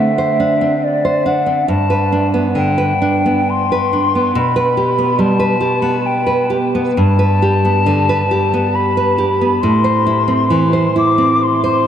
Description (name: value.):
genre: romantic duo for flute and classical guitar.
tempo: 68 BPM.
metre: 3/4.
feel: uneven beats, rubato.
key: G major.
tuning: A4 = 438 Hz.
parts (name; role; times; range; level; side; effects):
mellow hollow silver concert flute; melody; 0.0-11.9 s; D5 to D6; -16 LUFS; left 2 dB; analog delay.
nylon-string guitar; accompaniment; 0.0-11.9 s; G2 to C5; -14 LUFS; right 1 dB; none.
room: wet huge ambient reverb, RT60 9.3 s.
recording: dreamy mix soaked in reverb, cassette tape.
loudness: -12 LUFS.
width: side -9 dB against mid.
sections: 0.0-11.9 A section.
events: none.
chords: 0.0 D7; 1.7 G; 4.4 G/B; 7.0 G; 9.6 Am.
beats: 0.83 | 1.69 2.56 3.50 | 4.38 5.21 6.07 | 6.98 7.88 8.75 | 9.62 10.51 11.42.